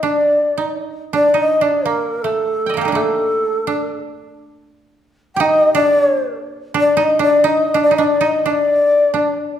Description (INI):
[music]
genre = japanese traditional, Japanese chamber music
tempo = 81-90 BPM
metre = 4/4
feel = rubato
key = unclear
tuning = A4 = 440 Hz
[part]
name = breathy long shakuhachi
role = melody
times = 0.0-9.5 s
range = A4 to G5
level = -15 LUFS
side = left 1 dB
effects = none
[part]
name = koto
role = second line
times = 0.0-9.6 s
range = A3 to G5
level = -20 LUFS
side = right 3 dB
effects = none
[sound]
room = moderate recital hall reverb, RT60 1.4 s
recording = recorded in a church or concert hall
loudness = -14 LUFS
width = side -10 dB against mid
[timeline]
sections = 0.0-9.6 A section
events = none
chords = none